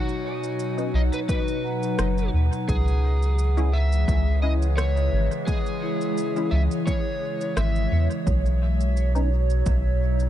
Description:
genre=ambient dub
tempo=86 BPM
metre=4/4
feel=swing 54% on 16ths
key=C# dorian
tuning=A4 = 441 Hz
part: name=overdriven slide guitar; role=melody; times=0.0-8.1 s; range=F#4 to E5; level=-31 LUFS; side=equal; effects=dub echo
part: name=warbly tape-like pad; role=sustained chords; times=0.0-10.3 s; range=B2 to C#5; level=-29 LUFS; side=equal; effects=chorus, built-in reverb, phaser
part: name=vibraphone with soft mallets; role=arpeggios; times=0.0-8.3 s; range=D#4 to A#5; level=-36 LUFS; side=left 2 dB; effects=dub echo
part: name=electronic shaker and rim click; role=drums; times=0.1-10.3 s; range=none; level=-35 LUFS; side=equal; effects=overdrive, dub echo
part: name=filtered dub chord stab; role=stabs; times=0.8-9.3 s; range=G#3 to E4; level=-34 LUFS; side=left 2 dB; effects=ensemble chorus, dub echo
part: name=soft dub sub bass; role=bass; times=0.9-10.3 s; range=F#1 to E2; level=-21 LUFS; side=equal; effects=none
part: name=electronic kick drum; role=drums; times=1.3-9.8 s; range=none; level=-26 LUFS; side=equal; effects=overdrive
room=digital ambience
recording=dark, warm production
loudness=-21 LUFS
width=side -12 dB against mid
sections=0.0-10.3 A section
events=none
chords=0.0 Badd9; 2.7 C#m; 8.3 Badd9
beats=0.59 1.29 1.99 | 2.69 3.38 4.08 4.78 | 5.48 6.17 6.87 7.57 | 8.27 8.96 9.66

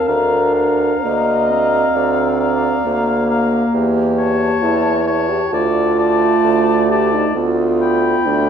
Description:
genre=classical, slow romantic movement for wind quintet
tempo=66 BPM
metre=4/4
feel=rubato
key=Bb major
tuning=A4 = 440 Hz
part: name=mellow silver concert flute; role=melody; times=0.0-8.5 s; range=A5 to B5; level=-22 LUFS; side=left 6 dB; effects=none
part: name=clear oboe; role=second line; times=0.0-8.5 s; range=C#5 to G5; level=-23 LUFS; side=left 4 dB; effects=none
part: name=mellow clarinet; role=accompaniment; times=0.0-8.5 s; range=A3 to D4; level=-21 LUFS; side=right 3 dB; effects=none
part: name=warm French horn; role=accompaniment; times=0.0-8.5 s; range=D4 to Eb5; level=-18 LUFS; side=right 1 dB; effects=none
part: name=warm bassoon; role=bass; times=0.1-8.5 s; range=D2 to E2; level=-19 LUFS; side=right 1 dB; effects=none
room=wet concert hall reverb, RT60 1.7 s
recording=minimal, uncompressed stereo recording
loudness=-13 LUFS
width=side -8 dB against mid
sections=0.0-8.5 A section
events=none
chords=0.1 Bb/D; 3.7 A7/E; 5.5 Dm; 7.3 G7/D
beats=| 0.08 1.04 1.95 2.85 | 3.74 4.62 5.52 6.43 | 7.35 8.26

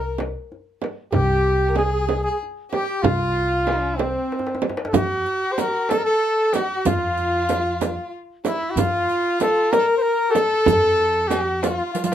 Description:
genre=Persian modal ensemble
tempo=63 BPM (dotted quarters)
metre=6/8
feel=straight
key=C dastgah shur, F dastgah chahargah from 5.0 s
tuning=A4 = 439 Hz
part: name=clear flugelhorn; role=melody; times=0.0-12.1 s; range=C4 to C5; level=-21 LUFS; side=equal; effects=none
part: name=clear violin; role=second line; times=0.0-12.1 s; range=C4 to Bb4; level=-26 LUFS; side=left 3 dB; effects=none
part: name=upright bass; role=bass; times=0.0-11.8 s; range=C2 to F2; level=-26 LUFS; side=equal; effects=none
part: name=frame drum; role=percussion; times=0.2-11.8 s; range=none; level=-23 LUFS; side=right 6 dB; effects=none
part: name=tombak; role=percussion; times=0.2-12.1 s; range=none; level=-29 LUFS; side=left 2 dB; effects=none
part: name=riq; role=percussion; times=4.9-12.1 s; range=none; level=-30 LUFS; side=right 6 dB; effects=none
room=light reverb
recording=none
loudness=-18 LUFS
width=side -10 dB against mid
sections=0.0-5.0 A section; 5.0-12.1 B section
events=drum fill 4.3-5.0, 11.9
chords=none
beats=0.17 | 1.13 2.08 | 3.04 4.00 | 4.95 5.90 | 6.86 7.81 | 8.77 9.72 | 10.68 11.63

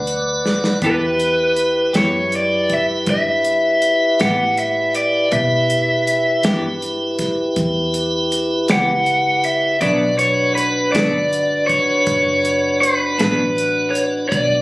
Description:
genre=slow blues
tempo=53 BPM (dotted quarters)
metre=12/8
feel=straight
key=unclear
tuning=A4 = 440 Hz
part: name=tonewheel organ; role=sustained chords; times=0.0-14.6 s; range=B3 to F#5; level=-20 LUFS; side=equal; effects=slow rotary speaker, overdrive
part: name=vintage muted fingered electric bass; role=bass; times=0.0-14.6 s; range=F#1 to B2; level=-26 LUFS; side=equal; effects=none
part: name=warm soul drum kit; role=drums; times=0.1-14.5 s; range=hi-hat, kick drum, snare drum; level=-23 LUFS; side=equal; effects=none
part: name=clean electric guitar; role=accompaniment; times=0.8-13.4 s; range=B2 to G4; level=-21 LUFS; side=left 1 dB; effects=tremolo
part: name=raw garage guitar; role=melody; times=0.9-14.6 s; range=B4 to F#5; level=-16 LUFS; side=equal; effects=overdrive
room=light reverb, studio reverb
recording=recorded on a phone in the room, club reverb, compression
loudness=-15 LUFS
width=side -21 dB against mid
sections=0.0-14.6 A section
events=drum fill 0.4-0.8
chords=0.0 Bm; 0.8 Em; 9.8 Bm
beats=| 0.82 1.94 3.07 4.20 | 5.32 6.45 7.57 8.69 | 9.82 10.94 12.06 13.19 | 14.31

